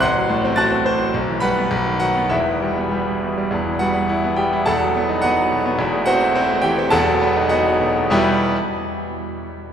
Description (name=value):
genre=classical, virtuoso piano study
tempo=96-108 BPM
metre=2/4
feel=rubato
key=E minor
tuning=A4 = 440 Hz
part: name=bright concert grand piano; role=solo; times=0.0-8.6 s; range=E1 to A6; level=-16 LUFS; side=equal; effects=none
room=wet cathedral reverb, RT60 4.9 s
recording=recorded in a church or concert hall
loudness=-16 LUFS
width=side -8 dB against mid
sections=0.0-3.5 A section; 3.5-8.1 B section; 8.1-9.3 C section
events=slowing down 5.2-8.1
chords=0.0 F#dim/A; 1.1 Em/B; 1.7 B; 2.3 Em; 4.7 B7/E; 5.8 Am/E; 6.9 B7/E; 8.1 Em